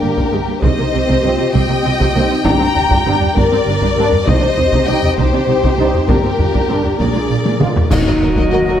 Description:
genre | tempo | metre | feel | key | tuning
cinematic, epic orchestral film score | 66 BPM (dotted quarters) | 6/8 | straight | C minor | A4 = 440 Hz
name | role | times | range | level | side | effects
warm symphonic violin section | melody | 0.0-8.7 s | Bb4 to Bb5 | -20 LUFS | left 4 dB | none
warm symphonic violin section | second line | 0.0-8.7 s | G4 to G5 | -21 LUFS | left 3 dB | none
dark symphonic viola section | accompaniment | 0.0-8.8 s | Ab3 to Ab4 | -22 LUFS | right 2 dB | none
clear trombone section | sustained chords | 0.0-8.8 s | G2 to F4 | -25 LUFS | right 4 dB | none
dark French horn section | sustained chords | 0.0-8.8 s | D4 to C5 | -21 LUFS | left 4 dB | none
warm studio cello section | bass | 0.0-8.7 s | Eb2 to C3 | -22 LUFS | right 4 dB | none
warm symphonic double bass section | bass | 0.0-8.6 s | G1 to Eb2 | -22 LUFS | right 4 dB | none
taiko ensemble | drums | 0.2-8.8 s | none | -18 LUFS | equal | none
clear woodwind section | sustained chords | 7.9-8.8 s | Gb3 to Eb5 | -24 LUFS | equal | none
clash cymbals and concert bass drum | percussion | 7.9-8.8 s | none | -20 LUFS | equal | none
room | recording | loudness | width
moderate concert hall reverb, RT60 2.0 s | none | -12 LUFS | side -10 dB against mid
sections
0.0-7.9 A section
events
drum fill 7.5-7.9; band accent 7.9-8.5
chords
0.0 Gm; 0.6 Cm; 2.5 Gm; 4.3 Cm; 6.1 Gm; 7.0 Bb7; 7.9 Ebm

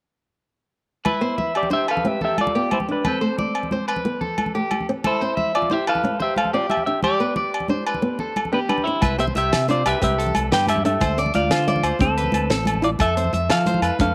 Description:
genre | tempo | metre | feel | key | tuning
highlife guitar band | 121 BPM (dotted quarters) | 12/8 | straight | C major | A4 = 439 Hz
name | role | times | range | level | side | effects
agogo bells | percussion | 1.0-14.0 s | none | -31 LUFS | equal | none
semi-hollow electric guitar | melody | 1.1-14.1 s | C4 to G5 | -25 LUFS | equal | none
electric guitar at the edge of break-up | arpeggios | 1.1-14.1 s | G4 to F5 | -29 LUFS | equal | tape echo
congas | percussion | 1.1-14.1 s | none | -30 LUFS | equal | none
nylon-string guitar | accompaniment | 1.2-14.1 s | E3 to E5 | -30 LUFS | equal | none
fingered electric bass | bass | 9.0-14.1 s | A1 to F3 | -27 LUFS | equal | none
damped 70s drum kit | drums | 9.0-14.1 s | hi-hat, kick drum, snare drum | -28 LUFS | equal | none
room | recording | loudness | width
moderate spring reverb, RT60 2.0 s | none | -21 LUFS | mono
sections
1.1-9.0 A section; 9.0-14.1 B section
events
none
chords
1.1 Cmaj7; 3.0 D5; 5.0 Fmaj7; 7.0 G; 9.0 Cmaj7; 11.0 Dm7; 13.0 Fmaj7

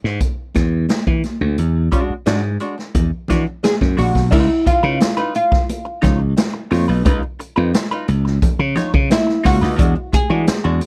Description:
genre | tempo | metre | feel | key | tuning
funk | 88 BPM | 4/4 | straight | Db mixolydian | A4 = 436 Hz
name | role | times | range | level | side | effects
slap bass | bass | 0.0-10.8 s | Bb1 to E3 | -19 LUFS | equal | none
swinging big-band drum kit | drums | 0.0-10.9 s | crash cymbal, hi-hat, kick drum, snare drum | -21 LUFS | equal | none
congas | percussion | 0.2-10.6 s | none | -28 LUFS | equal | none
archtop guitar, miked and amplified | accompaniment | 1.9-10.8 s | G#3 to Db5 | -25 LUFS | equal | wah
oud | melody | 3.6-10.9 s | Fb4 to G#4 | -22 LUFS | equal | none
room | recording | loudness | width
little or no reverb | none | -17 LUFS | mono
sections
0.0-4.3 A section; 4.3-10.9 B section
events
break 0.0-1.6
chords
0.0 E9; 4.3 Db9; 9.8 E9

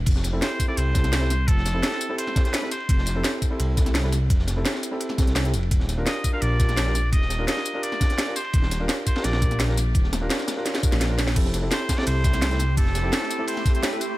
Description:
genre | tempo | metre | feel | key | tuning
liquid drum and bass | 170 BPM | 4/4 | straight | F major | A4 = 440 Hz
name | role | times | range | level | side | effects
dark detuned saw bass | bass | 0.0-13.1 s | Eb1 to C2 | -24 LUFS | equal | tube saturation
crunchy breakbeat drum kit | drums | 0.1-14.1 s | ride cymbal, snare drum | -33 LUFS | equal | high-pass filter on cymbals, high-pass filter on snare, high-pass filter on room
drum and bass drum kit | drums | 0.1-14.1 s | crash cymbal, hi-hat, ride cymbal, snare drum, tambourine | -28 LUFS | equal | none
electronic kick drum | drums | 0.1-13.7 s | none | -21 LUFS | equal | none
felt-muted upright piano | accompaniment | 0.3-14.0 s | C4 to Bb4 | -30 LUFS | equal | ping-pong delay
trumpet with straight mute | melody | 0.4-3.4, 6.1-14.2 s | A4 to F5 | -30 LUFS | equal | digital delay
shimmering ambient pad | sustained chords | 12.5-14.2 s | A3 to G4 | -33 LUFS | right 2 dB | chorus, built-in reverb, sidechain pumping
room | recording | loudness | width
studio ambience | none | -20 LUFS | side -17 dB against mid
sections
0.0-11.4 A section; 11.4-14.2 A section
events
drop 0.0-11.4, 11.4-14.2; drum fill 10.7-11.4; kick drops out 11.0-11.4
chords
0.1 Fmaj9; 5.7 Ebmaj9; 11.4 Fmaj9

